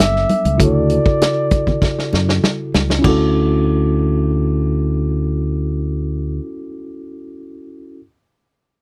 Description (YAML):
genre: lush 1970s-style soul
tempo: 98 BPM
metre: 4/4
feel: straight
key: D major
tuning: A4 = 441 Hz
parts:
  - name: breathy flugelhorn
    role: melody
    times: 0.0-2.4 s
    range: D5 to E5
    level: -22 LUFS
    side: equal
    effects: none
  - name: mellow tine electric piano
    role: accompaniment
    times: 0.0-8.0 s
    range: C#3 to A4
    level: -24 LUFS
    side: equal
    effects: none
  - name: fingered electric bass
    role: bass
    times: 0.0-6.4 s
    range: F#1 to F#2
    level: -20 LUFS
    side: equal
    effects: none
  - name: warm soul drum kit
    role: drums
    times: 0.0-3.2 s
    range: crash cymbal, hi-hat, kick drum, snare drum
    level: -20 LUFS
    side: equal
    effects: none
  - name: glockenspiel with rubber mallets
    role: texture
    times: 0.0-6.4 s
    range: D6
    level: -38 LUFS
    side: equal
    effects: none
  - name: congas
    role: percussion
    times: 0.3-3.3 s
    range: none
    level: -24 LUFS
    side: equal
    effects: none
room: little or no reverb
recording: dry, close 1970s-style studio recording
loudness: -17 LUFS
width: mono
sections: 0.0-3.0 A section; 3.0-5.5 B section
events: drum fill 1.8-3.0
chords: 0.0 Gmaj9 (rootless); 0.6 Dmaj7